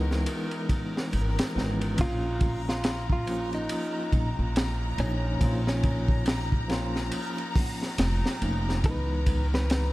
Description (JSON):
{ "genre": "trip hop", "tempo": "70 BPM", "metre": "4/4", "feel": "swing 60% on 16ths", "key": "unclear", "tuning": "A4 = 440 Hz", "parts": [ { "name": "tine electric piano", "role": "accompaniment", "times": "0.0-9.9 s", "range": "Fb3 to Eb5", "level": "-33 LUFS", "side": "equal", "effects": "tremolo, vintage 12-bit sampler grit" }, { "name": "rich symphonic string section", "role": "sustained chords", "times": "0.0-9.9 s", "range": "Bb4 to Bb5", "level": "-39 LUFS", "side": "left 4 dB", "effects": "none" }, { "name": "upright bass", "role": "bass", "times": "0.0-9.9 s", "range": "F1 to Db2", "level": "-28 LUFS", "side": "equal", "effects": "none" }, { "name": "backwards swelling texture", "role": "texture", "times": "0.0-9.9 s", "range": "Bb5", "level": "-42 LUFS", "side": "right 2 dB", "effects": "built-in reverb" }, { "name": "crunchy breakbeat drum kit", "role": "drums", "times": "0.1-9.9 s", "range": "hi-hat, kick drum, ride cymbal, snare drum", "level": "-29 LUFS", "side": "equal", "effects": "none" }, { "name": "direct-recorded clean electric guitar", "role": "melody", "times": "2.0-9.9 s", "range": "Db4 to Cb5", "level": "-36 LUFS", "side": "equal", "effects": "dub echo" } ], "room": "small room ambience", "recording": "dark, warm production", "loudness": "-25 LUFS", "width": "side -18 dB against mid", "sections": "0.0-9.9 A section", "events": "none", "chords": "0.0 Dbm7; 2.0 Bbm; 8.8 Dbm7" }